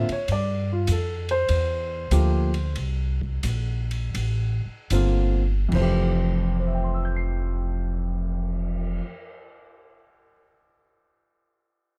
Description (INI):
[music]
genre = jazz piano trio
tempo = 71-101 BPM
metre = 4/4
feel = swing 68% on 8ths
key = F major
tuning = A4 = 439 Hz
[part]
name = warm grand piano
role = melody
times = 0.0-10.4 s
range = F2 to C7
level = -29 LUFS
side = equal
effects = none
[part]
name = upright bass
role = bass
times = 0.0-9.0 s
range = F1 to G2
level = -26 LUFS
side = equal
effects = none
[part]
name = open jazz drum kit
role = drums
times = 0.1-9.0 s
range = crash cymbal, cymbal swell, hi-hat, kick drum, ride cymbal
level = -40 LUFS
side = equal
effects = none
[sound]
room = light reverb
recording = none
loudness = -25 LUFS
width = mono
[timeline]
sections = 0.0-5.7 A section; 5.7-9.1 B section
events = slowing down 0.3-5.7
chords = 0.3 G7sus2; 2.8 C7(no3); 5.7 Fmaj9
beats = | 0.29 0.89 1.49 2.12 | 2.76 3.44 4.15 4.91 | 5.73 6.58 7.43 8.28